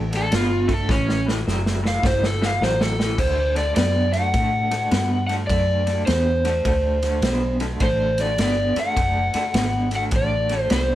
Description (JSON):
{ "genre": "electric blues shuffle", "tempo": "104 BPM", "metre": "4/4", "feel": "swing 65% on 8ths", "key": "D mixolydian", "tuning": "A4 = 440 Hz", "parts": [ { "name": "electric guitar through a small old amp", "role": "riff", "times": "0.0-10.9 s", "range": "A2 to B3", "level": "-26 LUFS", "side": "equal", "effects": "tremolo" }, { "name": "vintage muted fingered electric bass", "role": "bass", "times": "0.0-10.9 s", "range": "F#1 to A2", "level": "-24 LUFS", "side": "equal", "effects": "none" }, { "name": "vintage drum kit", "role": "drums", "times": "0.1-10.9 s", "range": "crash cymbal, kick drum, ride cymbal, snare drum", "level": "-25 LUFS", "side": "equal", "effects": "none" }, { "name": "overdriven slide guitar", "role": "melody", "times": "0.2-10.9 s", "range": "C#4 to F#5", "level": "-23 LUFS", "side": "equal", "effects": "none" } ], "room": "light reverb", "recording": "band playing live in one room", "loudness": "-18 LUFS", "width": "side -13 dB against mid", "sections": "0.0-3.2 A section; 3.2-10.9 B section", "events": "electric slide guitar solo 0.0-3.2; drum fill 0.9-3.2", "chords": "0.0 D5; 0.9 A5; 3.2 D7" }